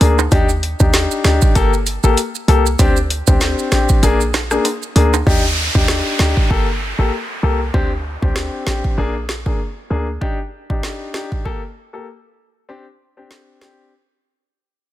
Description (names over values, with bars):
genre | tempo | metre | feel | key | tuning
dancehall | 97 BPM | 4/4 | swing 56% on 16ths | G minor | A4 = 440 Hz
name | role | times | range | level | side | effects
warm grand piano | accompaniment | 0.0-13.9 s | Bb3 to A4 | -20 LUFS | left 4 dB | none
short 808-style bass | bass | 0.0-10.2 s | G1 to Eb2 | -17 LUFS | equal | none
afro-pop drum kit | drums | 0.0-13.8 s | hi-hat, kick drum, rim click, snare drum | -18 LUFS | equal | none
timbales and maracas | percussion | 0.2-5.3 s | none | -23 LUFS | right 10 dB | none
downlifter | sound effects | 5.3-10.2 s | none | -23 LUFS | right 2 dB | none
room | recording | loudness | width
little or no reverb | dense, heavily limited modern master | -14 LUFS | side -14 dB against mid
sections
0.0-5.3 A section; 5.3-14.9 B section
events
kick muted 4.0-5.3; fade-out 5.3-14.9; break 13.9-14.9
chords
0.3 Ebmaj7; 1.6 Gmadd9; 2.8 D7sus4; 4.0 Bb7; 5.3 Ebmaj7; 6.5 Gmadd9; 7.7 D7sus4; 9.0 Bb7; 10.2 Ebmaj7; 11.5 Gmadd9; 12.7 D7sus4; 13.9 N.C.